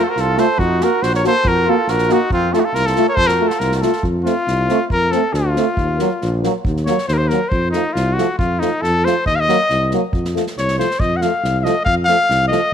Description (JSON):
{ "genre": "balkan folk, Balkan brass band", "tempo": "138 BPM", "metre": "2/4", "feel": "straight", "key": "F phrygian dominant", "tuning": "A4 = 440 Hz", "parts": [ { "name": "clear trumpet", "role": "melody", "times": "0.0-12.7 s", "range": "Eb4 to Gb5", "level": "-18 LUFS", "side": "left 2 dB", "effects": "none" }, { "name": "warm flugelhorn", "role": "second line", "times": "0.0-4.0 s", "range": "C4 to Bb4", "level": "-22 LUFS", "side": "right 11 dB", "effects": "none" }, { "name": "clear trombone", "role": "accompaniment", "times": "0.0-12.6 s", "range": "F3 to Bb3", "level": "-23 LUFS", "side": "right 12 dB", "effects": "none" }, { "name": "warm euphonium", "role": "accompaniment", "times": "0.0-12.6 s", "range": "A3 to Gb4", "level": "-23 LUFS", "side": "left 12 dB", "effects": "none" }, { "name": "mellow tuba", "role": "bass", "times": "0.2-12.5 s", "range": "Bb1 to F2", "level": "-20 LUFS", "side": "equal", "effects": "none" }, { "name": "unplugged drum kit", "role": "percussion", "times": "0.2-12.6 s", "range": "kick drum, snare drum", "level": "-25 LUFS", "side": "equal", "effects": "none" } ], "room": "light reverb, small room ambience", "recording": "1960s-style stereo with parts hard left and right", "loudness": "-14 LUFS", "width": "side -8 dB against mid", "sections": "0.0-4.0 A section; 4.0-12.7 B section", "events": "trumpet solo 4.0-12.7", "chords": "0.0 F; 0.6 Ebmadd9/Bb; 2.3 F; 5.8 Ebm; 7.5 F; 9.3 Ebm; 10.1 F" }